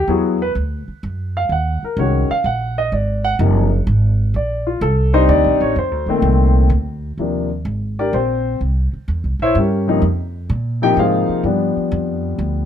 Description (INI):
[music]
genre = jazz piano trio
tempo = 127 BPM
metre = 3/4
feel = swing 68% on 8ths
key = Eb major from 7.2 s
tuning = A4 = 440 Hz
[part]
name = warm grand piano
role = melody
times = 0.0-12.7 s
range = Bb2 to G5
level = -17 LUFS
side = left 2 dB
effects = none
[part]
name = upright bass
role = bass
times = 0.0-12.7 s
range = Gb1 to Bb2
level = -18 LUFS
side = right 1 dB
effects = none
[sound]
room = light reverb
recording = close, detailed microphones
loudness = -15 LUFS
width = side -9 dB against mid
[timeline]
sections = 0.0-7.2 A section; 7.2-12.7 A section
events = grand piano solo 0.0-12.7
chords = 0.1 E7sus2; 1.5 Ebm7; 2.9 Ab9; 4.3 Bbmaj9; 7.2 Ebmaj7(no3); 8.6 C7b9; 10.0 Fm7; 11.4 G7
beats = | 0.08 0.55 1.03 | 1.50 1.97 2.45 | 2.92 3.39 3.87 | 4.34 4.81 5.29 | 5.76 6.23 6.71 | 7.18 7.65 8.13 | 8.60 9.07 9.55 | 10.02 10.49 10.97 | 11.44 11.91 12.39